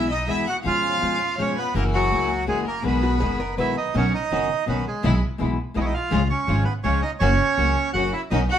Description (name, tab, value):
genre	tango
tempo	164 BPM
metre	3/4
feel	rubato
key	B major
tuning	A4 = 440 Hz
part	bandoneon	melody	0.0-8.6 s	F#3 to F#5	-24 LUFS	right 4 dB	none
part	rich violin	second line	0.0-3.5, 7.9-8.6 s	D#4 to F#5	-28 LUFS	left 6 dB	none
part	flamenco guitar	accompaniment	0.0-8.4 s	B2 to F#4	-26 LUFS	left 3 dB	none
part	clear studio string section	stabs	0.0-8.5 s	G#3 to G#4	-32 LUFS	right 1 dB	none
part	upright bass	bass	0.0-8.5 s	F#1 to E#2	-25 LUFS	equal	none
part	archtop guitar, miked and amplified	second line	3.0-3.9 s	F#4 to B4	-29 LUFS	equal	none
room	wet studio reverb, RT60 0.7 s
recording	band playing live in one room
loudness	-20 LUFS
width	side -10 dB against mid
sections	0.0-3.9 A section; 3.9-8.6 B section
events	none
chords	0.0 E; 0.7 C#7/E#; 1.7 F#7; 2.8 B6; 3.9 Badd9; 5.0 E/B; 6.1 C#; 7.2 F#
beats	0.29 | 0.65 1.02 1.39 | 1.75 2.11 2.48 | 2.84 3.21 3.58 | 3.95 4.31 4.68 | 5.04 5.40 5.76 | 6.12 6.49 6.85 | 7.21 7.58 7.95 | 8.32